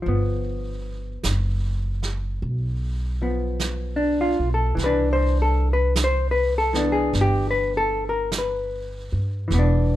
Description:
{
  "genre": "jazz ballad",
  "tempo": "51 BPM",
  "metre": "4/4",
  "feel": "swing 68% on 8ths",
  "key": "C major",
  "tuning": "A4 = 441 Hz",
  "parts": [
    { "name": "hollow-body jazz guitar", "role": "accompaniment", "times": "0.0-10.0 s", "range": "E3 to C5", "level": "-23 LUFS", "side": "left 2 dB", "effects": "none" },
    { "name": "upright bass", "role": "bass", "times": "0.1-10.0 s", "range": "E1 to G2", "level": "-23 LUFS", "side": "equal", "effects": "none" },
    { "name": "vintage brush drum kit", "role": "drums", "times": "0.1-10.0 s", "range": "brushed snare drum, hi-hat, snare drum", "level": "-30 LUFS", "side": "right 4 dB", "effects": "none" }
  ],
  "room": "little or no reverb",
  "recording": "minimal, uncompressed stereo recording",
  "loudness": "-20 LUFS",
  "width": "side -14 dB against mid",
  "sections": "0.0-10.0 A section",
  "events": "none",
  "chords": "0.1 G7; 4.8 Cmaj9"
}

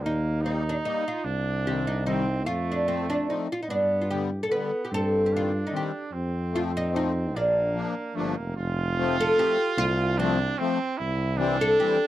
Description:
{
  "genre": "alpine folk, alpine dance band",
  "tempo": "148 BPM",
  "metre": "3/4",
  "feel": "swing 53% on 8ths",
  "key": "Bb major, F major from 8.6 s",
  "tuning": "A4 = 440 Hz",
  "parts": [
    { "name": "oud", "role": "melody", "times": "0.0-12.1 s", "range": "C4 to B4", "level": "-26 LUFS", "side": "equal", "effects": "none" },
    { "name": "clear trumpet", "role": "second line", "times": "0.0-12.1 s", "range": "A3 to F4", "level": "-30 LUFS", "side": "right 5 dB", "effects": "none" },
    { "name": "clear tuba", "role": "bass", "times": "0.0-11.8 s", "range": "F1 to G2", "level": "-29 LUFS", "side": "equal", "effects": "none" },
    { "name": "musette accordion", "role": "accompaniment", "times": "0.4-12.0 s", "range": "D3 to Eb4", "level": "-29 LUFS", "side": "left 6 dB", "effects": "none" }
  ],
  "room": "light reverb",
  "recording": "dry, close 1970s-style studio recording",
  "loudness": "-24 LUFS",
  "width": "side -14 dB against mid",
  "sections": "0.0-8.6 A section; 8.6-12.1 B section",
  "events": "none",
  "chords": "0.0 Eb; 1.3 Cm; 2.5 F; 3.7 G; 4.9 Cm/G; 6.1 F7; 7.3 Bb; 8.6 F; 11.0 C"
}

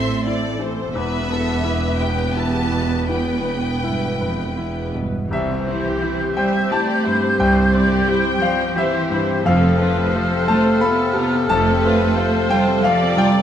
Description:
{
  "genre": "cinematic, emotional film score for orchestra",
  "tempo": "81-92 BPM",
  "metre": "3/4",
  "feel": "rubato",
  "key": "C major",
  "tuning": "A4 = 441 Hz",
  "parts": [
    { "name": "rich studio violin section", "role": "melody", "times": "0.0-13.4 s", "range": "A4 to C6", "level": "-30 LUFS", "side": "left 2 dB", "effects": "none" },
    { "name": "rich symphonic violin section", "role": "second line", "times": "0.0-13.4 s", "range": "G3 to E5", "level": "-28 LUFS", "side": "left 4 dB", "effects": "none" },
    { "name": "bright grand piano", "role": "accompaniment", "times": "0.0-13.4 s", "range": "C2 to B5", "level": "-23 LUFS", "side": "left 2 dB", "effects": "none" },
    { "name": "rich symphonic viola section", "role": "accompaniment", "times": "0.0-13.4 s", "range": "B3 to G5", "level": "-25 LUFS", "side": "right 1 dB", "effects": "none" },
    { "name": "rich symphonic cello section", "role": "bass", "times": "0.0-13.4 s", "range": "E2 to B3", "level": "-22 LUFS", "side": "right 2 dB", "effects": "none" },
    { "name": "rich symphonic double bass section", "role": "bass", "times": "0.0-12.1 s", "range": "E1 to C2", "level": "-25 LUFS", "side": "right 2 dB", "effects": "none" },
    { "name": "concert flute", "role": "second line", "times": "5.3-13.2 s", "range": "F6 to G6", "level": "-25 LUFS", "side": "left 1 dB", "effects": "none" },
    { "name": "warm clarinet", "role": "second line", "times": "5.3-13.2 s", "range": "G4 to A4", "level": "-28 LUFS", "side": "equal", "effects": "none" },
    { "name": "warm French horn section", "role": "sustained chords", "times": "5.3-13.3 s", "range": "C3 to A4", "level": "-26 LUFS", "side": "left 4 dB", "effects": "none" }
  ],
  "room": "light reverb",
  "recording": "close, detailed microphones",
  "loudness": "-16 LUFS",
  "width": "side -9 dB against mid",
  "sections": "0.0-5.3 A section; 5.3-13.4 A section",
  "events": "none",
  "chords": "0.0 Am; 0.9 Em; 5.3 C; 9.5 F"
}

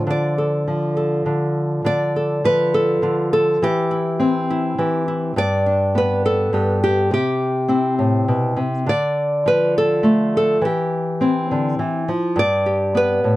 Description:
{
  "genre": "folk, solo fingerstyle acoustic guitar",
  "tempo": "68 BPM (dotted quarters)",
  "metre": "6/8",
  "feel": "straight",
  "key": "D dorian",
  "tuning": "A4 = 439 Hz",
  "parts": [
    { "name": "nylon-string guitar", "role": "solo", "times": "0.0-13.4 s", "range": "G2 to D5", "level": "-16 LUFS", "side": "equal", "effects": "none" }
  ],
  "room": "little or no reverb",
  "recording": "close, detailed microphones",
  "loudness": "-17 LUFS",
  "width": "side -17 dB against mid",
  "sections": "0.0-1.9 A section; 1.9-13.4 B section",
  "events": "none",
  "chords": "0.0 Dm; 3.6 C/E; 5.4 G; 7.1 C; 8.9 Dm; 10.6 C/E; 12.4 G"
}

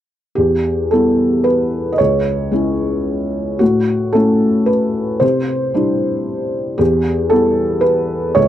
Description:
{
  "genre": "neoclassical minimalist piano",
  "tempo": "112 BPM",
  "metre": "3/4",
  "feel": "rubato",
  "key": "E minor",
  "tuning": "A4 = 440 Hz",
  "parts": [
    { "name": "felt-muted upright piano", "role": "solo", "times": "0.4-8.5 s", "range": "C#2 to D#5", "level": "-14 LUFS", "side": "equal", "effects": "none" }
  ],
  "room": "light reverb",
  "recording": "dry, close 1970s-style studio recording",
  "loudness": "-14 LUFS",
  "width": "side -11 dB against mid",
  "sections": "0.4-8.5 A section",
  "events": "none",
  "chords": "0.4 Em; 2.0 C#m; 3.6 A6; 5.2 Cadd9; 6.8 Em"
}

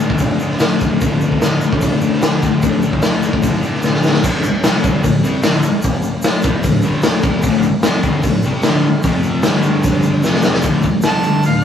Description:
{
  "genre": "garage rock duo or trio",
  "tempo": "149 BPM",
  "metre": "4/4",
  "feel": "straight",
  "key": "unclear",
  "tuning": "A4 = 440 Hz",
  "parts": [
    { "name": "thick fuzz guitar", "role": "riff", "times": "0.0-11.6 s", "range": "D2 to C4", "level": "-17 LUFS", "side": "left 2 dB", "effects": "distortion" },
    { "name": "raw garage drum kit", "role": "drums", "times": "0.1-11.5 s", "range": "crash cymbal, hi-hat, kick drum, snare drum", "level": "-15 LUFS", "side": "left 1 dB", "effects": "none" },
    { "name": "egg shaker", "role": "percussion", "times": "0.2-11.6 s", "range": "none", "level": "-36 LUFS", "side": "left 1 dB", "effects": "none" },
    { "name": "clear harmonica", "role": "melody", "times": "11.1-11.6 s", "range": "F5 to A5", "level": "-18 LUFS", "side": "right 4 dB", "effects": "overdrive" }
  ],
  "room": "light reverb",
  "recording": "rough rehearsal-room recording",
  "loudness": "-13 LUFS",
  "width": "side -8 dB against mid",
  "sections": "0.0-4.2 A section; 4.2-10.6 B section",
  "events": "drum fill 3.8-4.2, 10.2-10.6",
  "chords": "0.0 D5; 9.0 F5; 9.4 G5; 10.2 F5; 10.6 D5"
}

